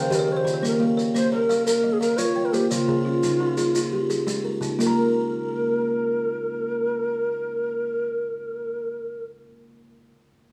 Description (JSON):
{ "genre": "southern african traditional, mbira-style interlocking cycle", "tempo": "116 BPM (dotted quarters)", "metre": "12/8", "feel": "straight", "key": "unclear", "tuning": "A4 = 440 Hz", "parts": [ { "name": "mellow low Native American-style wooden flute", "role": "melody", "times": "0.0-9.2 s", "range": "F4 to Db5", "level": "-27 LUFS", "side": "equal", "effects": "plate reverb" }, { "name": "buzzing kalimba", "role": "arpeggios", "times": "0.0-9.3 s", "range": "Db3 to Bb5", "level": "-29 LUFS", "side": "equal", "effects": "none" }, { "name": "kalimba", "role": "arpeggios", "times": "0.0-9.3 s", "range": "Db3 to Bb5", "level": "-29 LUFS", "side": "equal", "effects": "none" }, { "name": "maracas", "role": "percussion", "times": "0.1-5.0 s", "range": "none", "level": "-36 LUFS", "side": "equal", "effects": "none" } ], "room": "wet studio reverb, RT60 0.7 s", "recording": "small room reverb", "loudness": "-24 LUFS", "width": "mono", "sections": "0.0-4.8 A section; 4.8-8.9 B section", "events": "kalimba fill 0.0-0.6", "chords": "0.0 Eb; 0.6 Bbm; 2.7 Db; 4.8 N.C." }